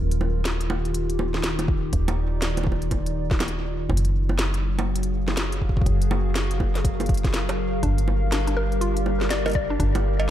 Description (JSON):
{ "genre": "IDM", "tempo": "122 BPM", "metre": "4/4", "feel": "swing 62% on 16ths", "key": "unclear", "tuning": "A4 = 440 Hz", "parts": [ { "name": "warbly tape-like pad", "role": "sustained chords", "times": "0.0-10.3 s", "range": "Eb3 to F5", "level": "-29 LUFS", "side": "left 1 dB", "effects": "chorus, built-in reverb" }, { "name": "metallic FM bass", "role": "bass", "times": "0.0-10.3 s", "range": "Eb1 to G1", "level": "-24 LUFS", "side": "equal", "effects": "none" }, { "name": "organic electronic drum kit", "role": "drums", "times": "0.1-10.3 s", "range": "bongos, cowbell, hi-hat, snare drum", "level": "-29 LUFS", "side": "right 1 dB", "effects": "tape echo" }, { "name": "electronic kick drum", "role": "drums", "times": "1.7-9.9 s", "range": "none", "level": "-25 LUFS", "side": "equal", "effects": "none" }, { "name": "mallet-like synth pluck", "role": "arpeggios", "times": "7.8-9.9 s", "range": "D4 to D5", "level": "-28 LUFS", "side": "left 3 dB", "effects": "chorus, cassette tape, ping-pong delay" } ], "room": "light reverb, digital ambience", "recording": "dark, warm production", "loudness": "-21 LUFS", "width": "side -12 dB against mid", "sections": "0.0-10.3 A section", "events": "none", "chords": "0.0 Ebmaj7; 3.9 Gbmaj7; 7.8 Gm7" }